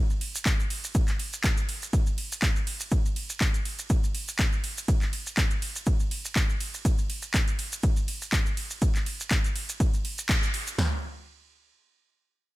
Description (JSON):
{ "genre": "house", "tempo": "122 BPM", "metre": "4/4", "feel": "swing 55% on 16ths", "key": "none", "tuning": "none", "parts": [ { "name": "maracas", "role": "percussion", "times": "0.1-10.8 s", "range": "none", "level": "-36 LUFS", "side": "right 2 dB", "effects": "none" }, { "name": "house drum kit", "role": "drums", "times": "0.2-10.8 s", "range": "handclaps, hi-hat, ride cymbal", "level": "-32 LUFS", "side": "equal", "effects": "overdrive" }, { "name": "punchy analog drum machine", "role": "drums", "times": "0.5-10.9 s", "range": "kick drum, snare drum, toms", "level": "-25 LUFS", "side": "equal", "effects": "none" } ], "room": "digital ambience", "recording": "none", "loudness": "-25 LUFS", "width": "side -18 dB against mid", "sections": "0.0-10.8 A section; 10.8-12.6 B section", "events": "drop 0.0-10.8; band accent 10.3", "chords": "none" }